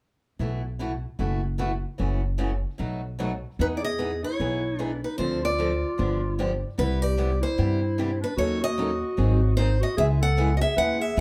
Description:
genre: acoustic string swing (jazz manouche).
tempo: 150 BPM.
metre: 4/4.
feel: swing 61% on 8ths.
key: unclear.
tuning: A4 = 440 Hz.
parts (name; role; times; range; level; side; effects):
picked steel-string acoustic guitar; accompaniment; 0.4-11.2 s; B2 to A4; -34 LUFS; equal; none.
upright bass; bass; 0.4-11.2 s; F#1 to G2; -28 LUFS; equal; none.
picked steel-string acoustic guitar; melody; 3.6-11.2 s; B4 to F#5; -31 LUFS; equal; none.
breathy clarinet; second line; 3.6-11.2 s; D4 to B4; -32 LUFS; equal; none.
room: moderate club reverb, RT60 0.7 s.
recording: none.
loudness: -26 LUFS.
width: mono.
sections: 0.4-3.6 A section; 3.6-11.2 B section.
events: none.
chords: 0.4 B7sus4; 2.0 F#m7; 2.8 B7; 3.6 Emaj7; 5.2 Dm7; 6.0 G7; 6.8 Cmaj7; 8.4 D#m7b5; 9.2 G#7; 10.0 C#m7.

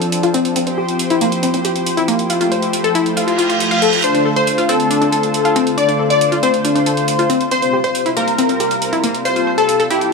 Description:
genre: uplifting trance.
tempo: 138 BPM.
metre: 4/4.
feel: straight.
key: D minor.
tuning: A4 = 436 Hz.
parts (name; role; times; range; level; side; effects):
lush unison pad; sustained chords; 0.0-10.1 s; C3 to C5; -20 LUFS; equal; chorus.
electronic hi-hat; drums; 0.0-10.1 s; none; -24 LUFS; right 3 dB; none.
analog pluck; arpeggios; 0.2-10.0 s; Bb3 to F5; -18 LUFS; left 3 dB; chorus, dub echo.
reverse cymbal; sound effects; 3.3-4.0 s; none; -21 LUFS; right 4 dB; none.
supersaw stab; melody; 4.0-10.1 s; G4 to D5; -16 LUFS; left 2 dB; dub echo.
room: moderate huge ambient reverb, RT60 4.0 s.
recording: none.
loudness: -13 LUFS.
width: side -3 dB against mid.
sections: 0.0-10.1 A section.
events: filter sweep on synth pluck 0.0-10.1; reverse cymbal 3.3-4.0.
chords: 0.0 Dm7; 0.6 Csus4; 2.3 Fadd9; 4.0 Dm7; 7.5 Csus4; 9.3 Fadd9.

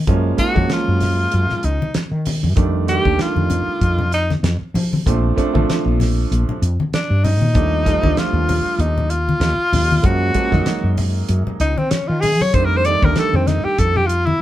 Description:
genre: electric jazz fusion.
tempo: 96 BPM.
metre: 4/4.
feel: swing 56% on 16ths.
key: unclear.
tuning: A4 = 440 Hz.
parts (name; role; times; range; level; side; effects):
woody fretless electric bass; bass; 0.0-14.3 s; A1 to Gb3; -18 LUFS; equal; none.
warm grand piano; accompaniment; 0.1-14.1 s; Eb3 to Eb4; -22 LUFS; right 4 dB; none.
damped 70s drum kit; drums; 0.1-14.3 s; hi-hat, kick drum, snare drum; -22 LUFS; equal; none.
breathy tenor saxophone; melody; 0.4-14.4 s; C4 to D5; -19 LUFS; left 1 dB; none.
congas; percussion; 0.6-14.4 s; none; -24 LUFS; left 3 dB; none.
room: moderate small room reverb, RT60 0.5 s.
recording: band playing live in one room.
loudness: -15 LUFS.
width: side -13 dB against mid.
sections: 0.0-14.4 A section.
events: tenor saxophone solo 0.0-14.4.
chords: 0.1 Gbmaj9; 2.6 F13; 5.1 Bbmaj7; 7.6 Ebmaj9#11; 10.0 Gbmaj9; 12.5 F13.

